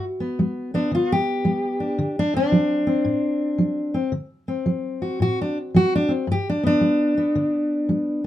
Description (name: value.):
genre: acoustic country blues, solo or duo.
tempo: 112 BPM.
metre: 4/4.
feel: swing 65% on 8ths.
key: D mixolydian.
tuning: A4 = 443 Hz.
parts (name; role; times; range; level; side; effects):
fingerpicked steel-string acoustic guitar; solo; 0.0-8.3 s; G2 to G4; -20 LUFS; equal; none.
room: moderate studio reverb, RT60 0.6 s.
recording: minimal, uncompressed stereo recording.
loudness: -20 LUFS.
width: side -13 dB against mid.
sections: 0.0-8.3 A section.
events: steel-string acoustic guitar solo 0.0-8.3.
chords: 0.0 G; 2.0 D7; 6.3 G.